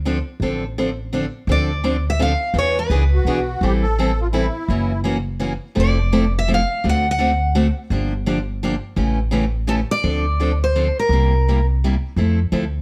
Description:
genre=acoustic string swing (jazz manouche)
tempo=169 BPM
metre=3/4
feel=swing 62% on 8ths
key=D minor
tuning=A4 = 440 Hz
part: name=upright bass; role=bass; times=0.0-12.8 s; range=F1 to F2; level=-22 LUFS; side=equal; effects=none
part: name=picked steel-string acoustic guitar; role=accompaniment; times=0.1-12.6 s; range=C3 to A4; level=-24 LUFS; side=equal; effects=none
part: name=picked steel-string acoustic guitar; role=melody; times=1.5-3.5, 5.8-11.7 s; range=A4 to F#5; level=-24 LUFS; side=equal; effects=plate reverb
part: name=musette accordion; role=second line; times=3.1-5.0 s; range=E4 to A4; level=-27 LUFS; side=equal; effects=none
room=light reverb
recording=none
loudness=-19 LUFS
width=mono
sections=0.0-1.5 A section; 1.5-10.0 B section; 10.0-12.8 A section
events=none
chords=0.0 Dm7; 2.6 E7; 3.6 Am7; 4.7 F#7; 5.8 Fmaj7; 6.8 D7; 7.9 Gm7; 9.0 A7; 10.0 Dm7; 11.1 C7; 12.2 Fmaj7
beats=0.06 | 0.42 0.77 1.13 | 1.49 1.85 2.21 | 2.56 2.92 3.28 | 3.63 3.99 4.35 | 4.71 5.06 5.42 | 5.77 6.13 6.49 | 6.84 7.20 7.55 | 7.91 8.26 8.62 | 8.97 9.33 9.68 | 10.04 10.39 10.75 | 11.11 11.46 11.82 | 12.17 12.53

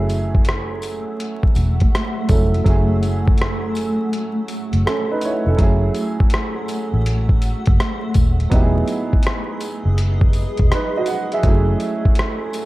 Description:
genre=lo-fi hip hop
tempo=82 BPM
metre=4/4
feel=swing 65% on 16ths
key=F# dorian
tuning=A4 = 440 Hz
part: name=warm upright piano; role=accompaniment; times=0.0-12.7 s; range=F#3 to F#5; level=-23 LUFS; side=right 3 dB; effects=low-pass filter
part: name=granular cloud pad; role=sustained chords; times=0.9-12.7 s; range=A3 to E6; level=-27 LUFS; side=left 1 dB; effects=built-in reverb, low-pass filter
part: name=vintage muted fingered electric bass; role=bass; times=0.0-11.7 s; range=D#1 to A1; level=-19 LUFS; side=equal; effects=none
part: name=dusty soul sampler-style drum kit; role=drums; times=0.1-12.7 s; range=hi-hat, kick drum, rim click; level=-18 LUFS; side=equal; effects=none
part: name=tambourine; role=percussion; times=0.1-12.7 s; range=none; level=-41 LUFS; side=left 4 dB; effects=none
room=digital ambience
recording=vinyl crackle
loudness=-16 LUFS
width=side -18 dB against mid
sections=0.0-5.6 A section; 5.6-12.7 B section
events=break 4.1-5.6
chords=0.0 F#m7; 8.5 Emaj7; 11.4 F#m7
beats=0.46 1.20 1.93 | 2.66 3.39 4.12 4.85 | 5.59 6.32 7.05 7.78 | 8.51 9.24 9.98 10.71 | 11.44 12.17

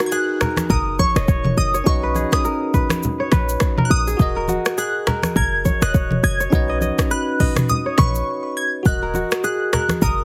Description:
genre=afrobeats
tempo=103 BPM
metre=4/4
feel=swing 58% on 16ths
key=Eb minor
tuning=A4 = 439 Hz
part: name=glassy wavetable pluck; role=melody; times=0.0-10.2 s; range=Db6 to Ab6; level=-26 LUFS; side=equal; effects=chorus, delay
part: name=bell-like tine electric piano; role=accompaniment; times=0.0-10.2 s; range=C#4 to D#5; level=-29 LUFS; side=equal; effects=phaser
part: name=kora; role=riff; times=0.0-10.2 s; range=Gb4 to Eb5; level=-27 LUFS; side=equal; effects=delay
part: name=afro-pop drum kit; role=drums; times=0.0-10.2 s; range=finger snaps, hi-hat, kick drum, rim click, shaker, toms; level=-23 LUFS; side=equal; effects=none
part: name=congas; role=percussion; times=0.4-10.2 s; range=none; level=-28 LUFS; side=equal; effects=none
part: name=short 808-style bass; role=bass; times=0.7-10.2 s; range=Eb1 to B1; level=-23 LUFS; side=equal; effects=none
room=little or no reverb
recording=heavily compressed radio sound, multiband compression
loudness=-19 LUFS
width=mono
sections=0.0-10.2 A section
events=break 8.3-8.9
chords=0.0 Ebm; 1.9 Badd9; 4.2 Ebm; 6.5 Badd9; 8.9 Ebm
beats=0.12 0.70 1.28 | 1.86 2.45 3.03 3.61 | 4.20 4.78 5.36 5.94 | 6.53 7.11 7.69 8.27 | 8.86 9.44 10.02

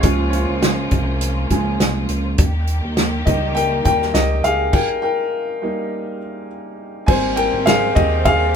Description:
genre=piano-driven pop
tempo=102 BPM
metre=4/4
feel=swing 56% on 16ths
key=Ab major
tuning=A4 = 440 Hz
part: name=clear upright piano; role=accompaniment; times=0.0-8.6 s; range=F3 to Ab5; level=-19 LUFS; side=left 1 dB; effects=none
part: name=clear studio string section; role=sustained chords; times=0.0-8.6 s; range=Eb3 to G4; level=-27 LUFS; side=equal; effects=none
part: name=chorused synth bass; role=bass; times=0.0-8.6 s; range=Ab1 to Eb2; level=-22 LUFS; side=equal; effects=none
part: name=natural country drum kit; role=drums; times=0.0-8.4 s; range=crash cymbal, hi-hat, kick drum, ride cymbal, snare drum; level=-18 LUFS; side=equal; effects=none
room=light reverb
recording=band playing live in one room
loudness=-16 LUFS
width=side -7 dB against mid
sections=0.0-7.1 A section; 7.1-8.6 B section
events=upright piano solo 0.0-7.1, 7.1-8.6; stop 4.7-7.1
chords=0.0 Db; 2.4 Eb; 7.1 Abmaj7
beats=| 0.03 0.62 1.21 1.79 | 2.38 2.97 3.56 4.15 | 4.74 5.32 5.91 6.50 | 7.08 7.67 8.26

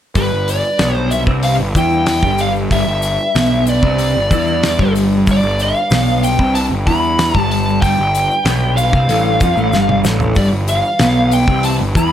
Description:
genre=psychedelic rock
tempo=94 BPM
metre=4/4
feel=straight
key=G mixolydian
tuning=A4 = 440 Hz
part: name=mellow tonewheel organ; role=sustained chords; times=0.1-12.1 s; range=E3 to B4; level=-28 LUFS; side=right 4 dB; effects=slow rotary speaker
part: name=fuzz lead guitar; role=melody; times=0.2-12.1 s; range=B4 to B5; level=-17 LUFS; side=left 1 dB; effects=distortion, analog delay
part: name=clean electric guitar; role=riff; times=0.2-12.1 s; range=G2 to F4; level=-17 LUFS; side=equal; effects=rotary speaker, double-tracked left and right
part: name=fuzz picked electric bass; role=bass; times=0.2-12.1 s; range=G1 to F2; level=-19 LUFS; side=equal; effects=overdrive
part: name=damped 70s drum kit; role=drums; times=0.2-12.1 s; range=hi-hat, kick drum, snare drum, toms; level=-19 LUFS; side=equal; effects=none
part: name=egg shaker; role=percussion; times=0.2-12.1 s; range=none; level=-32 LUFS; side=left 16 dB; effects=none
room=light reverb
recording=none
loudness=-12 LUFS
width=side -10 dB against mid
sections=0.2-12.1 A section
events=drum fill 9.7-10.4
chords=0.2 G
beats=| 0.16 0.80 1.44 2.08 | 2.72 3.36 4.00 4.64 | 5.28 5.91 6.55 7.19 | 7.83 8.46 9.10 9.73 | 10.37 11.00 11.64

